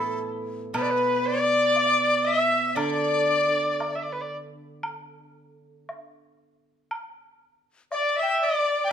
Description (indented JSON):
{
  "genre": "chinese traditional, Chinese chamber ensemble",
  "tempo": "59 BPM",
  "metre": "2/4",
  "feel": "rubato",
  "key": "unclear",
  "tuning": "A4 = 440 Hz",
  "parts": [
    { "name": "dark erhu", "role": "melody", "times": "0.0-4.3, 7.9-8.9 s", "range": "A4 to G5", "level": "-24 LUFS", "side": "right 2 dB", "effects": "none" },
    { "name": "bright reedy dizi", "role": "second line", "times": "0.0-3.9, 7.9-8.9 s", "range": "A4 to E5", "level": "-25 LUFS", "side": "left 6 dB", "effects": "none" },
    { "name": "steel-string zither", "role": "accompaniment", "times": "0.0-5.9 s", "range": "A2 to E4", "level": "-31 LUFS", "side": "right 3 dB", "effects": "none" },
    { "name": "woodblock", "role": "percussion", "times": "0.7-8.2 s", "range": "none", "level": "-34 LUFS", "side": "right 1 dB", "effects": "none" }
  ],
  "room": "moderate recital hall reverb, RT60 1.3 s",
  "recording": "close, detailed microphones",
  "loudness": "-21 LUFS",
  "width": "side -8 dB against mid",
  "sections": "0.0-8.9 A section",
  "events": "none",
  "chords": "none"
}